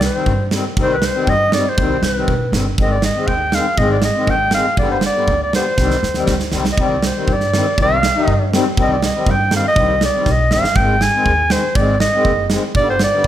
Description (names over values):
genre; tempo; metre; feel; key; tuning
klezmer; 120 BPM; 2/4; straight; C harmonic minor; A4 = 436 Hz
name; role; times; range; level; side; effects
warm clarinet; melody; 0.0-13.3 s; B4 to Ab5; -17 LUFS; right 1 dB; none
upright bass; bass; 0.0-13.3 s; F#1 to G2; -21 LUFS; equal; none
gated 80s drum kit; drums; 0.0-13.3 s; kick drum, snare drum; -19 LUFS; right 2 dB; none
musette accordion; accompaniment; 0.1-13.3 s; D3 to Eb4; -21 LUFS; left 4 dB; none
room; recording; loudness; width
moderate recital hall reverb, RT60 1.4 s; none; -13 LUFS; side -11 dB against mid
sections
0.0-6.8 A section; 6.8-13.3 A section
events
drum fill 5.8-6.8, 10.3-10.8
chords
0.0 Cm; 2.8 Ab; 4.8 G; 5.8 Cm; 10.8 Ab; 12.7 G